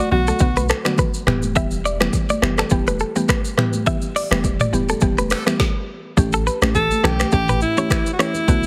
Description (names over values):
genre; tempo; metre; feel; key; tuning
afrobeats; 104 BPM; 4/4; swing 55% on 16ths; unclear; A4 = 440 Hz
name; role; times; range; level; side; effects
bright alto saxophone; melody; 0.0-0.7, 6.8-8.7 s; E4 to A4; -24 LUFS; equal; none
mallet-like synth pluck; accompaniment; 0.0-8.7 s; D3 to G4; -26 LUFS; equal; chorus
direct-recorded clean electric guitar; riff; 0.0-8.3 s; A4 to E5; -26 LUFS; equal; tape echo
punchy sub bass; bass; 0.1-8.7 s; E1 to B1; -26 LUFS; equal; none
congas; percussion; 0.1-8.5 s; none; -31 LUFS; equal; none
afro-pop drum kit; drums; 0.3-8.7 s; finger snaps, hi-hat, kick drum, rim click, shaker, snare drum, toms; -23 LUFS; equal; overdrive
room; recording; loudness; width
light reverb; heavily compressed radio sound, multiband compression; -19 LUFS; mono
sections
0.0-6.2 A section; 6.2-8.7 B section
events
stop 5.6-6.2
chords
0.0 Bm; 1.3 Em; 6.2 A7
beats
0.40 0.98 | 1.56 2.13 2.71 3.29 | 3.87 4.44 5.02 5.60 | 6.17 6.75 7.33 7.90 | 8.48